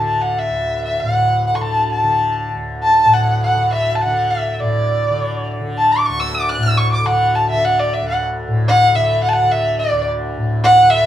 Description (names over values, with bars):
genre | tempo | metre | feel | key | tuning
indian classical, Hindustani | 103 BPM | 4/4 | uneven beats | D raga hamsadhwani | A4 = 439 Hz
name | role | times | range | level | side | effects
warm violin | melody | 0.0-11.1 s | D5 to F#6 | -15 LUFS | equal | plate reverb
tanpura | drone | 0.0-11.1 s | D2 to D3 | -20 LUFS | left 1 dB | none
room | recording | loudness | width
wet small room reverb, RT60 0.5 s | heard from further back in the room | -14 LUFS | side -11 dB against mid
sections
0.0-4.6 A section; 4.6-11.1 B section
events
speeding up 0.0-11.1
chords
none